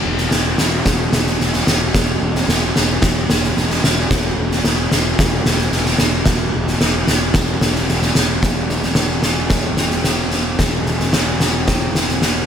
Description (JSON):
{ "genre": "post-rock", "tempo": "111 BPM", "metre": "4/4", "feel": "straight", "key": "unclear", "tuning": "A4 = 441 Hz", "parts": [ { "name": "fuzz picked electric bass", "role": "bass", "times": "0.1-12.5 s", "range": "E1", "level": "-20 LUFS", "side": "equal", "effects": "overdrive" }, { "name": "oversized low-tuned drum kit", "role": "drums", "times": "0.2-12.3 s", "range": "kick drum, snare drum", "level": "-15 LUFS", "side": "equal", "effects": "none" } ], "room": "light reverb", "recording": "none", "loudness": "-14 LUFS", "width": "side -8 dB against mid", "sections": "0.0-8.4 A section; 8.4-12.5 B section", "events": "none", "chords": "none" }